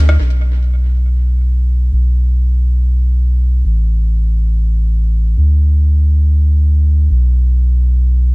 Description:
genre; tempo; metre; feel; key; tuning
IDM; free time; none; none; B minor; A4 = 440 Hz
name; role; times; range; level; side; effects
round analog bass; bass; 0.0-8.3 s; A1 to D2; -11 LUFS; equal; none
room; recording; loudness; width
little or no reverb; none; -11 LUFS; side -31 dB against mid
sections
0.2-8.3 A section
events
none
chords
none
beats
free time

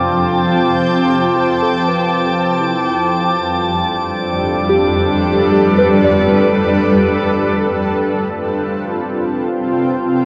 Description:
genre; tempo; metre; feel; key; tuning
ambient; free time; none; none; unclear; A4 = 440 Hz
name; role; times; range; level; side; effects
granular cloud pad; sustained chords; 0.0-10.2 s; F2 to A5; -17 LUFS; equal; built-in reverb
soft synth bell; arpeggios; 0.0-8.5 s; E4 to D5; -23 LUFS; equal; chorus, phaser, delay
pedal harmonium; drone; 0.0-7.7 s; F3 to C4; -27 LUFS; equal; none
drifting glass-harmonics texture; texture; 0.0-10.2 s; G5 to D6; -26 LUFS; equal; chorus, built-in reverb
room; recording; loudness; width
wet huge ambient reverb, RT60 7.1 s; worn, warbling old tape, cassette tape, warbly pitch drift; -15 LUFS; mono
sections
0.0-7.6 A section; 7.6-10.2 B section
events
fade-in on synth bell 0.0-7.6; fade-out on harmonium 0.0-7.6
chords
0.0 G/F; 7.6 F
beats
free time

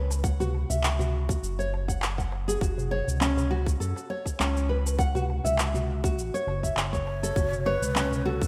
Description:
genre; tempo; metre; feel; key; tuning
organic downtempo; 101 BPM; 4/4; swing 55% on 16ths; F# minor; A4 = 440 Hz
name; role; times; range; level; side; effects
nylon-string guitar; arpeggios; 0.0-8.4 s; C#4 to F#5; -32 LUFS; equal; digital delay
smooth synth bass; bass; 0.0-8.5 s; F#1 to F#2; -31 LUFS; equal; none
electronic shaker and handclaps; drums; 0.1-8.5 s; none; -34 LUFS; equal; none
darbuka; percussion; 0.1-8.2 s; none; -40 LUFS; equal; none
electronic kick drum; drums; 0.2-8.5 s; none; -30 LUFS; equal; none
breathy ney; melody; 7.1-8.5 s; A4 to C#5; -33 LUFS; equal; digital delay
room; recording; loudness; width
moderate lush hall reverb, RT60 2.2 s; rough home demo mix; -27 LUFS; mono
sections
0.0-8.5 A section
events
none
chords
0.0 F#5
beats
| 0.24 0.83 1.43 2.02 | 2.61 3.21 3.80 4.40 | 4.99 5.58 6.18 6.77 | 7.37 7.96

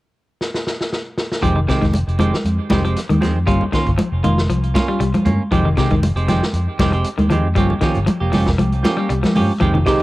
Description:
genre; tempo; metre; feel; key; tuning
afrobeat; 117 BPM; 4/4; swing 53% on 16ths; F minor; A4 = 439 Hz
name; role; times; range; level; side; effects
vintage drum kit; drums; 0.4-10.0 s; hi-hat, kick drum, snare drum; -22 LUFS; equal; cassette tape
electric guitar at the edge of break-up; arpeggios; 1.4-10.0 s; C3 to G3; -21 LUFS; left 4 dB; none
semi-hollow electric guitar; stabs; 1.4-10.0 s; Eb3 to G4; -21 LUFS; right 3 dB; tape echo
fingered electric bass; bass; 1.4-10.0 s; F1 to G2; -19 LUFS; equal; none
congas; percussion; 1.8-9.9 s; none; -20 LUFS; right 1 dB; none
barky tine electric piano; accompaniment; 9.9-10.0 s; Ab3 to G4; -16 LUFS; right 2 dB; overdrive
room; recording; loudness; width
light reverb, small room ambience; home recording on cassette; -15 LUFS; side -18 dB against mid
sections
0.0-1.4 A section; 1.4-10.0 B section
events
drum fill 0.4-1.4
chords
0.0 N.C.; 1.4 Fm9; 3.5 Gm7b5; 5.5 Fm9; 7.6 Gm7b5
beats
0.41 0.92 | 1.43 1.94 2.46 2.97 | 3.48 3.99 4.50 5.01 | 5.52 6.03 6.54 7.05 | 7.57 8.08 8.59 9.10 | 9.61

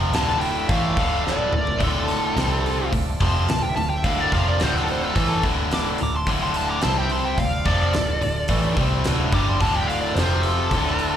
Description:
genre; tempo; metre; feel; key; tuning
blues rock power trio and southern rock; 108 BPM; 4/4; straight; D minor; A4 = 440 Hz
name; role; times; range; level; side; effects
overdriven tonewheel organ; sustained chords; 0.0-11.2 s; A3 to Eb5; -37 LUFS; right 3 dB; none
biting overdriven guitar; riff; 0.0-11.2 s; D2 to C4; -24 LUFS; equal; slapback echo
vintage muted picked electric bass; bass; 0.0-11.2 s; D1 to C2; -24 LUFS; equal; none
smooth overdriven lead guitar; melody; 0.1-11.2 s; A4 to D6; -26 LUFS; left 1 dB; wah
huge arena drum kit; drums; 0.1-11.1 s; hi-hat, kick drum, snare drum, toms; -27 LUFS; equal; none
nasal lead guitar with a parked wah; second line; 0.2-11.2 s; F4 to Bb5; -34 LUFS; right 3 dB; overdrive, slapback echo
room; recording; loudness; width
little or no reverb; live gig heard through the venue's PA, recital hall reverb; -19 LUFS; side -10 dB against mid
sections
0.0-11.2 A section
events
drum fill 1.3-1.8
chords
0.0 Dm; 2.4 C5; 2.9 Dm; 6.8 C5; 7.4 Dm; 10.2 F5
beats
0.14 0.69 1.25 | 1.81 2.37 2.92 3.48 | 4.04 4.60 5.16 5.71 | 6.27 6.83 7.38 7.94 | 8.49 9.05 9.61 10.16 | 10.71

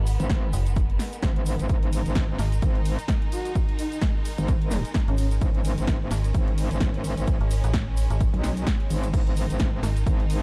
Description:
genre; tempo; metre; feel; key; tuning
bass house; 129 BPM; 4/4; swing 57% on 16ths; G# minor; A4 = 437 Hz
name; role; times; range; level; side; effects
clear studio string section; sustained chords; 0.0-10.4 s; D#3 to D#4; -40 LUFS; equal; sidechain pumping
metallic FM bass; bass; 0.0-10.0 s; F#1 to A1; -26 LUFS; equal; tube saturation, sidechain pumping
house drum kit; drums; 0.1-10.4 s; crash cymbal, hi-hat, ride cymbal, snare drum; -36 LUFS; equal; studio reverb
egg shaker; percussion; 0.1-10.4 s; none; -48 LUFS; equal; none
metallic wobble bass; bass; 0.2-10.4 s; G#1 to B1; -28 LUFS; equal; distortion, chorus, overdrive, sidechain pumping
electronic kick drum; drums; 0.3-10.2 s; none; -27 LUFS; equal; studio reverb
breathy flute-like synth lead; melody; 3.3-5.3 s; C#4 to F#4; -35 LUFS; equal; chorus, dub echo
room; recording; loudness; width
little or no reverb; dark, warm production; -24 LUFS; mono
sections
0.0-10.4 A section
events
none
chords
0.0 G#5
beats
0.30 0.76 1.23 | 1.69 2.16 2.62 3.09 | 3.55 4.02 4.48 4.95 | 5.42 5.88 6.34 6.81 | 7.28 7.74 8.21 8.67 | 9.14 9.60 10.07

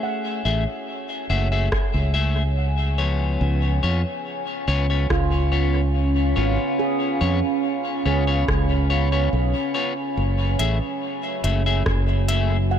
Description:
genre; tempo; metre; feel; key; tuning
ambient dub; 71 BPM; 4/4; straight; F# minor; A4 = 440 Hz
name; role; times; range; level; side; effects
deep dark ambient pad; sustained chords; 0.0-12.8 s; F#3 to B5; -26 LUFS; right 2 dB; chorus, built-in reverb
handpan; arpeggios; 0.0-12.8 s; E#4 to F#5; -33 LUFS; right 7 dB; low-pass filter, dub echo
electric guitar at the edge of break-up; stabs; 0.0-12.6 s; E#3 to E5; -27 LUFS; left 4 dB; dub echo
fingered electric bass; bass; 0.5-12.8 s; F#1 to E#2; -21 LUFS; equal; none
electronic kick drum; drums; 1.7-12.0 s; none; -26 LUFS; equal; none
organic electronic drum kit; drums; 1.7-12.5 s; hi-hat, rim click; -31 LUFS; equal; dub echo
room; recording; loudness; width
light reverb; none; -19 LUFS; side -9 dB against mid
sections
0.0-12.8 A section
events
none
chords
0.0 F#m9; 3.4 C#7; 10.2 F#m9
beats
| 0.03 0.88 1.72 2.57 | 3.41 4.26 5.10 5.95 | 6.79 7.64 8.48 9.33 | 10.17 11.02 11.86 12.71

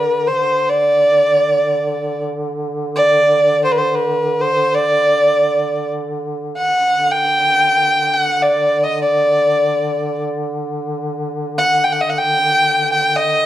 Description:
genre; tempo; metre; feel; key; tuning
Turkish makam ensemble; free time; none; none; D makam hicaz; A4 = 440 Hz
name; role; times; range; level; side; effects
rich violin; melody; 0.0-13.5 s; B4-42c to G5; -14 LUFS; equal; none
mellow duduk; drone; 0.0-13.5 s; D3; -24 LUFS; equal; none
room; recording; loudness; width
moderate recital hall reverb, RT60 1.3 s; dark, warm production; -14 LUFS; side -13 dB against mid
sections
0.0-13.5 A section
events
none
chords
none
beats
free time

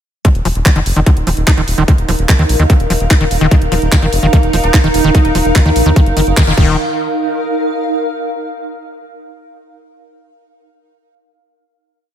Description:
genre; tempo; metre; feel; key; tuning
psychedelic trance; 147 BPM; 4/4; straight; unclear; A4 = 440 Hz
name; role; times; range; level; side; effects
screaming distorted acid line; riff; 0.2-6.8 s; Eb3 to Eb4; -17 LUFS; moving between left 4 dB and right 4 dB; distortion, chorus, auto-pan, sidechain pumping, dub echo
electronic kick drum; drums; 0.2-6.7 s; none; -9 LUFS; equal; studio reverb
garage drum kit; drums; 0.2-6.7 s; crash cymbal, handclaps, hi-hat; -20 LUFS; right 1 dB; studio reverb
granular cloud pad; texture; 1.0-8.4 s; Eb4 to F5; -19 LUFS; equal; built-in reverb, sidechain pumping
round analog bass; bass; 0.3-6.8 s; Eb1 to Eb2; -15 LUFS; equal; none
evolving wavetable pad; sustained chords; 4.1-6.6 s; Eb4; -20 LUFS; right 3 dB; chorus, built-in reverb, sidechain pumping
resonant blip pluck; second line; 4.3-5.3 s; Bb3 to Eb4; -28 LUFS; left 4 dB; none
room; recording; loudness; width
light reverb, digital ambience; none; -10 LUFS; side -10 dB against mid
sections
0.2-6.8 groove; 6.8-8.4 final note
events
filter sweep on acid bass 0.2-6.8; band accent 6.4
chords
0.2 Eb5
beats
| 0.25 0.66 1.06 1.47 | 1.88 2.29 2.70 3.11 | 3.51 3.92 4.33 4.74 | 5.15 5.55 5.96 6.37 | 6.78 7.19 7.59 8.00

